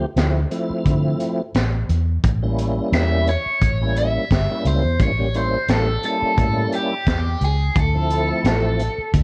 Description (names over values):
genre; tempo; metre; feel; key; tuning
straight-eighth soul blues; 87 BPM; 4/4; swing 56% on 16ths; D minor; A4 = 440 Hz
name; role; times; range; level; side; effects
tonewheel organ; accompaniment; 0.0-8.8 s; F3 to G4; -27 LUFS; equal; slow rotary speaker, overdrive, chorus vibrato
vintage muted fingered electric bass; bass; 0.0-9.2 s; G1 to D3; -23 LUFS; equal; none
crunchy breakbeat drum kit; drums; 0.2-9.2 s; hi-hat, kick drum, snare drum; -24 LUFS; equal; none
overdriven electric guitar; melody; 2.9-9.1 s; G4 to E5; -25 LUFS; equal; phaser
room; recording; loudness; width
light reverb; cassette tape; -20 LUFS; mono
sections
0.0-9.2 A section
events
none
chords
0.0 Dm7; 2.2 A7b9; 7.8 Dm7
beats
0.17 0.86 1.55 | 2.24 2.93 3.62 4.31 | 5.00 5.69 6.38 7.07 | 7.76 8.45 9.14